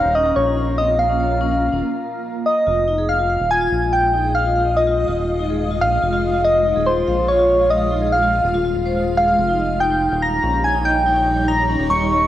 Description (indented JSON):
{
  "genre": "IDM",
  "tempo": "143 BPM",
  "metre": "4/4",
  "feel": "straight",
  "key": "F minor",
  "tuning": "A4 = 441 Hz",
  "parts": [
    { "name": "soft struck synth lead", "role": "melody", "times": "0.0-12.3 s", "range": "C5 to Db6", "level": "-18 LUFS", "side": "equal", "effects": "chorus, cassette tape, tape echo" },
    { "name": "granular cloud pad", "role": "sustained chords", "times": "0.0-12.3 s", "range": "G3 to Bb5", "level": "-25 LUFS", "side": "right 1 dB", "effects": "built-in reverb" },
    { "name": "round analog bass", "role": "bass", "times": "0.0-12.3 s", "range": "Eb1 to Bb1", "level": "-23 LUFS", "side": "equal", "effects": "none" },
    { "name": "vibraphone with medium mallets", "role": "arpeggios", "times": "0.2-12.2 s", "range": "C4 to F5", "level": "-24 LUFS", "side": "left 3 dB", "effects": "analog delay" }
  ],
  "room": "moderate spring reverb, RT60 2.4 s",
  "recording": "home recording on cassette",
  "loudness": "-16 LUFS",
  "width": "side -12 dB against mid",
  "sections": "0.0-2.7 A section; 2.7-12.3 B section",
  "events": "break 1.8-2.7",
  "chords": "0.0 Db6; 2.7 Fm7; 9.4 Eb7"
}